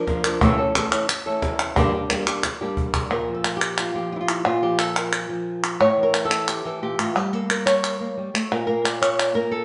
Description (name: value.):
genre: flamenco.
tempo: 178 BPM.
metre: 4/4.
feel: straight.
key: unclear.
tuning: A4 = 439 Hz.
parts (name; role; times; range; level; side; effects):
flamenco guitar; melody; 0.0-9.6 s; G2 to D5; -25 LUFS; equal; none.
cajon; percussion; 0.1-3.0 s; none; -28 LUFS; equal; none.
palmas hand claps; percussion; 0.2-9.4 s; none; -26 LUFS; equal; none.
room: wet stone room reverb, RT60 1.0 s.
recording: band playing live in one room, nothing above 10.3 kHz.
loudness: -22 LUFS.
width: mono.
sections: 0.0-3.1 A section; 3.1-9.6 B section.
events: drum fill 2.4-3.1.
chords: 0.4 A; 1.8 Gm; 3.1 Bb5; 5.8 A5; 7.2 Gm; 8.5 Bb.